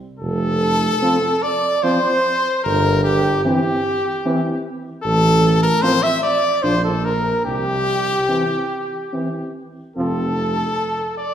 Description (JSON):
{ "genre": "classical, brass quintet", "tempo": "74 BPM", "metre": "3/4", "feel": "rubato", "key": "F major", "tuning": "A4 = 439 Hz", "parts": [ { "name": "clear trumpet", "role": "melody", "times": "0.2-11.3 s", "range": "G4 to E5", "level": "-21 LUFS", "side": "left 4 dB", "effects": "none" }, { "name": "mellow flugelhorn", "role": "second line", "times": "0.2-11.3 s", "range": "G4 to E5", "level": "-23 LUFS", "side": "right 4 dB", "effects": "none" }, { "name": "mellow tuba", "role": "bass", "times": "0.2-10.6 s", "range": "F1 to C2", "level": "-21 LUFS", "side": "right 1 dB", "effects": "none" }, { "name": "mellow French horn", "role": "accompaniment", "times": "1.0-10.3 s", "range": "C4 to D4", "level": "-25 LUFS", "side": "left 1 dB", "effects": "none" }, { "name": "warm trombone", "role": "accompaniment", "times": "1.0-10.3 s", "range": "E3 to F3", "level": "-27 LUFS", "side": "right 2 dB", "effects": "none" } ], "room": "wet recital hall reverb, RT60 1.6 s", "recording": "heard from further back in the room", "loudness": "-16 LUFS", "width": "side -9 dB against mid", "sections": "0.2-11.3 A section", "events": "none", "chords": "0.2 F; 2.6 C/G; 5.0 N.C.; 6.6 Bbmaj9; 7.5 C; 10.0 F", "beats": "| 0.20 1.02 1.83 | 2.64 3.44 4.25 | 5.04 5.83 6.63 | 7.45 8.28 9.12 | 9.96 10.78" }